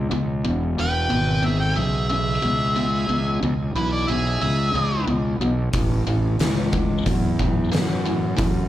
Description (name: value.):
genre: blues rock power trio and southern rock.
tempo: 91 BPM.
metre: 4/4.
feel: straight.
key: E major.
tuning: A4 = 439 Hz.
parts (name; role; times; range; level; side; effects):
biting overdriven guitar; riff; 0.0-8.7 s; E2 to F#3; -26 LUFS; equal; none.
fuzz fingered electric bass; bass; 0.0-8.7 s; E1 to F#2; -23 LUFS; equal; overdrive.
clear harmonica; melody; 0.8-5.1 s; B4 to G5; -26 LUFS; equal; overdrive, slapback echo, digital delay.
dark smooth lead guitar; second line; 0.8-5.0 s; E4 to B4; -29 LUFS; right 3 dB; overdrive, digital delay.
oversized low-tuned drum kit; drums; 5.7-8.5 s; hi-hat, kick drum, snare drum; -23 LUFS; equal; none.
room: little or no reverb.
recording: live gig heard through the venue's PA, club reverb.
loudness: -19 LUFS.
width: side -13 dB against mid.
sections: 0.0-8.7 A section.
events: none.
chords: 0.0 E; 5.7 A.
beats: | 0.44 1.10 1.76 2.43 | 3.09 3.75 4.41 5.07 | 5.74 6.40 7.06 7.72 | 8.38.